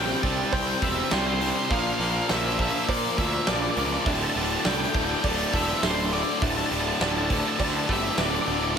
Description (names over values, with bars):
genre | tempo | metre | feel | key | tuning
post-rock | 102 BPM | 4/4 | straight | D minor | A4 = 440 Hz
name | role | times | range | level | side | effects
octave-fuzz lead guitar | melody | 0.0-8.8 s | C5 to A5 | -29 LUFS | left 1 dB | distortion, analog delay
muted studio string section | sustained chords | 0.0-8.8 s | E3 to D5 | -39 LUFS | right 4 dB | none
felt-muted upright piano | arpeggios | 0.0-8.8 s | C5 to F5 | -36 LUFS | right 7 dB | analog delay
overdriven electric guitar | riff | 0.0-8.8 s | D2 to C4 | -29 LUFS | left 7 dB | none
tight distorted guitar | riff | 0.0-8.8 s | D2 to C4 | -30 LUFS | right 14 dB | distortion
fuzz picked electric bass | bass | 0.0-8.8 s | D1 to Bb2 | -31 LUFS | right 1 dB | overdrive
huge arena drum kit | drums | 0.2-8.6 s | hi-hat, kick drum, snare drum | -29 LUFS | right 1 dB | none
room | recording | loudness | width
light reverb, small room ambience | none | -22 LUFS | side -7 dB against mid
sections
0.0-8.8 A section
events
none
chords
0.0 C; 1.7 Bbadd9; 4.1 Dsus2